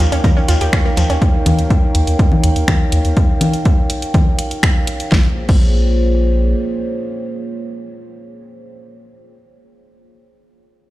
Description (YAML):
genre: melodic techno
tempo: 123 BPM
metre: 4/4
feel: straight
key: Bb dorian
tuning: A4 = 441 Hz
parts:
  - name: dark analog pad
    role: sustained chords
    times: 0.0-9.0 s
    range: Bb3 to G5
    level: -22 LUFS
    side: right 1 dB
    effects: chorus, sidechain pumping
  - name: wide unison pluck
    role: arpeggios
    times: 0.0-1.1 s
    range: F3 to Bb5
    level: -25 LUFS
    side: right 1 dB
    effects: sidechain pumping, tape echo
  - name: round analog bass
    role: bass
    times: 0.0-6.5 s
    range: Bb1 to Eb2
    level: -15 LUFS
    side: equal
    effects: sidechain pumping
  - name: deep house drum kit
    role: drums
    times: 0.0-5.6 s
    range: congas, crash cymbal, finger snaps, hi-hat, snare drum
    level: -20 LUFS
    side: left 2 dB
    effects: overdrive
  - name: deep dark ambient pad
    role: texture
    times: 0.0-1.2 s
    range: Bb4 to G5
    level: -34 LUFS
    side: right 2 dB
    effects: none
  - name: shekere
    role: percussion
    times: 0.1-1.2 s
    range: none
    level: -30 LUFS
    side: left 3 dB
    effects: none
  - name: electronic kick drum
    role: drums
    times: 0.2-5.6 s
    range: none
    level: -14 LUFS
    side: equal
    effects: overdrive
room: little or no reverb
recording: played on a big sound system in a bare room, stone room reverb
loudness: -13 LUFS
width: side -16 dB against mid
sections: 0.0-5.1 A section; 5.1-9.0 B section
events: drop 0.0-5.1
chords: 0.0 Eb7; 5.1 Bbm7